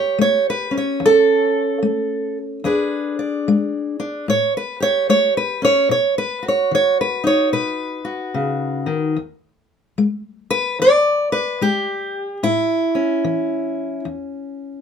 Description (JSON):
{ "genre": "acoustic country blues, solo or duo", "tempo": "74 BPM", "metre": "4/4", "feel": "swing 63% on 8ths", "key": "E mixolydian", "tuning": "A4 = 440 Hz", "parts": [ { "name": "fingerpicked steel-string acoustic guitar", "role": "solo", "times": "0.0-14.8 s", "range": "E2 to D5", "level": "-17 LUFS", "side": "equal", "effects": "none" } ], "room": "moderate studio reverb, RT60 0.6 s", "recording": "minimal, uncompressed stereo recording", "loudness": "-17 LUFS", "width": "side -7 dB against mid", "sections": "0.0-9.2 A section; 9.2-14.8 B section", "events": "steel-string acoustic guitar solo 9.2-14.8", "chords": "0.0 A7; 2.7 E7; 4.3 A7; 5.9 B; 9.2 E; 12.4 A" }